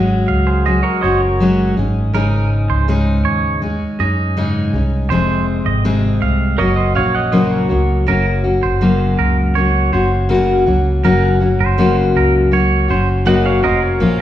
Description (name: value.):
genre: acoustic pop.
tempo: 81 BPM.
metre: 4/4.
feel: straight.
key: unclear.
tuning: A4 = 440 Hz.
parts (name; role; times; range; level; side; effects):
fingerpicked steel-string acoustic guitar; accompaniment; 0.0-14.2 s; F2 to Ab4; -15 LUFS; left 2 dB; none.
mellow fretless electric bass; bass; 0.0-14.2 s; F1 to Gb2; -17 LUFS; equal; none.
twangy electric guitar; arpeggios; 0.3-13.8 s; Bb4 to F5; -22 LUFS; right 7 dB; none.
pedal steel guitar; second line; 0.5-1.7, 6.6-8.0, 13.3-14.2 s; Ab4 to Gb5; -22 LUFS; right 4 dB; none.
room: wet recital hall reverb, RT60 1.6 s.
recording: recorded in a church or concert hall.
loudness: -13 LUFS.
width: side -12 dB against mid.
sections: 0.0-8.1 A section; 8.1-14.0 B section.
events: none.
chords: 0.0 Gbsus2; 1.8 Absus4; 5.1 Fm; 6.6 Gb.